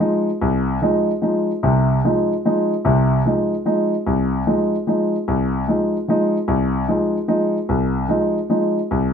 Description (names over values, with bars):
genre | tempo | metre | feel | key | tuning
jazz | 148 BPM | 3/4 | swing 66% on 8ths | F minor | A4 = 440 Hz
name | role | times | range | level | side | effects
warm grand piano | solo | 0.0-9.1 s | C2 to Eb4 | -17 LUFS | equal | none
room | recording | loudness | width
light reverb | none | -17 LUFS | side -7 dB against mid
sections
0.0-9.1 A section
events
none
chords
0.0 Fm7